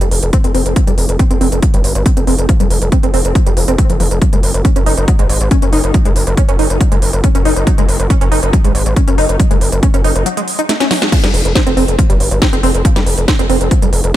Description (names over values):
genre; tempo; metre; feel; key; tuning
driving peak-time techno; 139 BPM; 4/4; straight; unclear; A4 = 440 Hz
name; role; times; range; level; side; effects
tight sequenced synth; riff; 0.0-14.2 s; F3 to Eb4; -18 LUFS; equal; chorus, sidechain pumping, ping-pong delay
gritty driven synth bass; bass; 0.0-14.1 s; F1 to Ab1; -15 LUFS; equal; sidechain pumping
techno drum kit; drums; 0.0-14.1 s; crash cymbal, hi-hat, snare drum; -20 LUFS; right 1 dB; none
electronic kick drum; drums; 0.3-13.8 s; none; -12 LUFS; equal; none
room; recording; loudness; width
light reverb; none; -10 LUFS; side -14 dB against mid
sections
0.0-11.1 A section; 11.1-14.2 B section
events
break 10.3-11.1; drum fill 10.7-11.1; band accent 11.0; drop 11.1-14.2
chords
0.0 F5; 4.2 N.C.; 11.1 F5